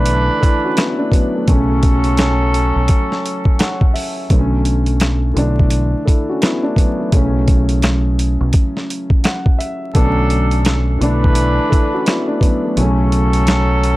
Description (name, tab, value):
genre	hip hop, boom-bap hip-hop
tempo	85 BPM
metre	4/4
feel	swing 62% on 16ths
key	unclear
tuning	A4 = 440 Hz
part	dark grand piano	accompaniment	0.0-14.0 s	C#3 to F#5	-19 LUFS	equal	high-pass filter, low-pass filter
part	warm horn section	stabs	0.0-3.9, 9.9-14.0 s	E3 to B4	-20 LUFS	right 1 dB	high-pass filter, low-pass filter, tape echo
part	deep dub fingered electric bass	bass	0.0-14.0 s	B1	-16 LUFS	equal	tube saturation
part	boom bap sampler-style drum kit	drums	0.1-14.0 s	hi-hat, kick drum, snare drum	-15 LUFS	equal	none
part	finger snaps	percussion	0.8-13.7 s	none	-31 LUFS	left 2 dB	none
room	little or no reverb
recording	dry, gritty hardware recording, transformer saturation, vinyl crackle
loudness	-13 LUFS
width	side -18 dB against mid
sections	0.0-4.3 A section; 4.3-14.0 A section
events	kick muted 12.8-14.0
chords	0.0 Dsus2/B; 1.5 F#m/B; 4.3 Bm7; 5.4 Dsus2/B; 7.1 F#m/B; 9.9 Bm7; 11.0 Dsus2/B; 12.8 F#m/B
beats	0.07 0.77 | 1.48 2.18 2.89 3.59 | 4.30 5.01 5.71 6.42 | 7.12 7.83 8.54 9.24 | 9.95 10.65 11.36 12.06 | 12.77 13.48